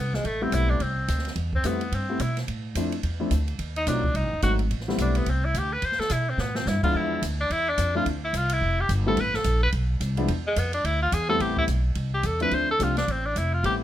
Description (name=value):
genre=jazz, small-group swing and bop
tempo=215 BPM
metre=4/4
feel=swing 60% on 8ths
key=A minor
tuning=A4 = 441 Hz
part: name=clear tenor saxophone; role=melody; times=0.0-13.8 s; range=G#3 to C5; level=-26 LUFS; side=equal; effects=plate reverb
part: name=upright bass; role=bass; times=0.0-13.8 s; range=F1 to B2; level=-26 LUFS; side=equal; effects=none
part: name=open jazz drum kit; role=drums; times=0.1-13.7 s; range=crash cymbal, hi-hat, kick drum, ride cymbal, snare drum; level=-34 LUFS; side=right 1 dB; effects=none
part: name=warm baby grand piano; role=accompaniment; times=0.4-13.8 s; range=F3 to G4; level=-28 LUFS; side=left 2 dB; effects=none
room=light reverb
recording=none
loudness=-23 LUFS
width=side -12 dB against mid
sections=0.0-11.4 A section; 11.4-13.8 A section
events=tenor saxophone solo 0.0-13.8; drum fill 6.4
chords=0.2 Am9; 2.5 Dm9; 3.6 D#dim7; 4.7 Am9; 6.9 E7b9; 8.1 Dm9; 9.2 Amadd9; 10.3 E5; 11.4 Am9; 12.5 Dm9